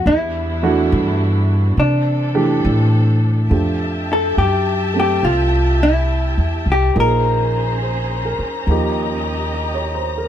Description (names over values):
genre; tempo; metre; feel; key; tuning
jazz ballad; 70 BPM; 4/4; swing 67% on 8ths; unclear; A4 = 440 Hz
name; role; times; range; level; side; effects
vintage hollow-body jazz guitar; melody; 0.0-8.7 s; D4 to Bb4; -19 LUFS; left 1 dB; none
warm studio string section; sustained chords; 0.0-10.3 s; E3 to Bb5; -26 LUFS; left 1 dB; none
upright bass; bass; 0.0-10.3 s; Bb1 to C3; -18 LUFS; equal; none
warm baby grand piano; accompaniment; 0.6-10.3 s; E3 to Eb5; -21 LUFS; right 3 dB; none
room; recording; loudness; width
little or no reverb; close, detailed microphones; -15 LUFS; side -10 dB against mid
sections
0.0-3.5 A section; 3.5-10.3 B section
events
none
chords
0.1 Em7; 1.8 C69; 3.5 Fmaj9; 7.0 Bbm9; 8.7 Eb7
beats
| 0.06 0.92 1.78 2.65 | 3.51 4.37 5.23 6.10 | 6.96 7.82 8.68 9.54